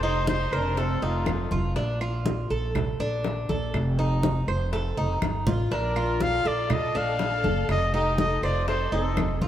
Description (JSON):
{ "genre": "latin, Cuban son and guajira", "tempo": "121 BPM", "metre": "4/4", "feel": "straight", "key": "Bb major", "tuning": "A4 = 440 Hz", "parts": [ { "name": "warm trumpet", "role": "melody", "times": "0.0-1.5, 5.7-9.4 s", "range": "F4 to F5", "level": "-28 LUFS", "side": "left 2 dB", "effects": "tape echo" }, { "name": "rich studio violin section", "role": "second line", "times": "0.0-1.5, 5.7-9.4 s", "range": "A3 to A4", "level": "-35 LUFS", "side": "equal", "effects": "tape echo" }, { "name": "Cuban tres", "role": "arpeggios", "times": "0.0-9.5 s", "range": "D4 to C5", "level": "-30 LUFS", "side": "right 1 dB", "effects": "none" }, { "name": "upright bass", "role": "bass", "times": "0.0-9.5 s", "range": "F1 to Bb1", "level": "-28 LUFS", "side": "equal", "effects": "none" }, { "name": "congas", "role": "percussion", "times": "0.0-9.5 s", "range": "none", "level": "-30 LUFS", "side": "equal", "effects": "none" }, { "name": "bongos", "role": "percussion", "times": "0.3-9.5 s", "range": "none", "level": "-37 LUFS", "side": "left 4 dB", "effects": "none" }, { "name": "claves", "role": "percussion", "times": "0.5-9.4 s", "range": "none", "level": "-42 LUFS", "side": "right 4 dB", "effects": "none" } ], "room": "wet plate reverb, RT60 2.6 s", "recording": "heard from further back in the room", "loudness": "-23 LUFS", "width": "side -11 dB against mid", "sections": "0.0-9.5 A section", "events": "drum fill 5.2-5.7", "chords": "0.0 F7; 1.8 Bbmaj7; 3.7 F7; 5.7 Bbmaj7; 7.7 F7" }